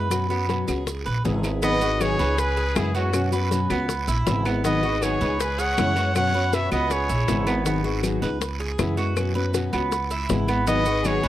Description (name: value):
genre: latin, Cuban son and guajira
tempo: 159 BPM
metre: 4/4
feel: straight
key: unclear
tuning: A4 = 440 Hz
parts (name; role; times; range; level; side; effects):
- fingerpicked plugged-in steel-string acoustic guitar; accompaniment; 0.0-11.3 s; B2 to G#4; -27 LUFS; left 3 dB; none
- Cuban tres; arpeggios; 0.0-11.3 s; B3 to B4; -28 LUFS; right 4 dB; none
- upright bass; bass; 0.0-11.3 s; G#1 to F#2; -26 LUFS; right 1 dB; none
- bongos; percussion; 0.1-11.2 s; none; -30 LUFS; left 7 dB; none
- claves; percussion; 0.1-11.2 s; none; -36 LUFS; left 4 dB; none
- guiro; percussion; 0.1-11.3 s; none; -38 LUFS; right 5 dB; none
- maracas; percussion; 0.1-11.3 s; none; -37 LUFS; right 7 dB; none
- clear trumpet; melody; 1.6-7.5, 10.7-11.3 s; F#4 to F#5; -26 LUFS; left 1 dB; tape echo
- clear studio violin section; second line; 1.6-7.5, 10.7-11.3 s; C#4 to C#5; -32 LUFS; right 3 dB; none
room: light reverb, studio reverb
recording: dry, close 1970s-style studio recording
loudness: -21 LUFS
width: side -13 dB against mid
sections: 0.0-1.6 A section; 1.6-11.3 B section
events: none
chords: 0.1 F#sus4; 0.9 C#m7; 1.6 G#m7; 2.4 C#m7; 3.1 F#sus4; 3.9 C#m7; 4.6 G#m7; 5.4 C#m7; 6.2 F#sus4; 6.9 C#m7; 7.7 G#m7; 8.4 C#m7; 9.2 F#sus4; 9.9 C#m7; 10.7 G#m7